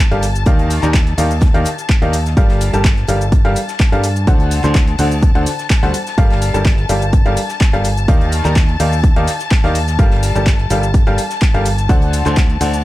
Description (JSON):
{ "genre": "piano house", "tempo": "126 BPM", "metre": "4/4", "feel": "swing 53% on 16ths", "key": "G minor", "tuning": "A4 = 439 Hz", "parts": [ { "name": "dark studio string section", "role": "sustained chords", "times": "0.0-12.8 s", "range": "A5", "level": "-25 LUFS", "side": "left 5 dB", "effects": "sidechain pumping" }, { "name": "bright upright piano", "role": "riff", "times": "0.1-12.7 s", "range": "D3 to C6", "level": "-19 LUFS", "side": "left 1 dB", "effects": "sidechain pumping, ping-pong delay" }, { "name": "modern bright fingered electric bass", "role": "bass", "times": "0.1-12.8 s", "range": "G1 to G2", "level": "-17 LUFS", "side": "equal", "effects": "sidechain pumping" }, { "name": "punchy analog drum machine", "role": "drums", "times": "0.1-12.8 s", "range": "cabasa, handclaps, hi-hat", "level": "-24 LUFS", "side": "equal", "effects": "none" }, { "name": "modern studio drum kit", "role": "drums", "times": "0.2-12.7 s", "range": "hi-hat, snare drum", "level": "-35 LUFS", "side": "left 2 dB", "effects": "none" }, { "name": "electronic kick drum", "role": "drums", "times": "0.5-12.5 s", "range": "none", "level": "-12 LUFS", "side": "equal", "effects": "none" } ], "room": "little or no reverb", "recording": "dark, warm production", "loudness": "-12 LUFS", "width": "side -16 dB against mid", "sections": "0.0-12.8 A section", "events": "none", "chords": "0.5 Ebmaj9; 2.4 Gm9; 4.3 D7; 5.9 Gm9; 8.1 Ebmaj9; 10.0 Gm9; 11.9 D7" }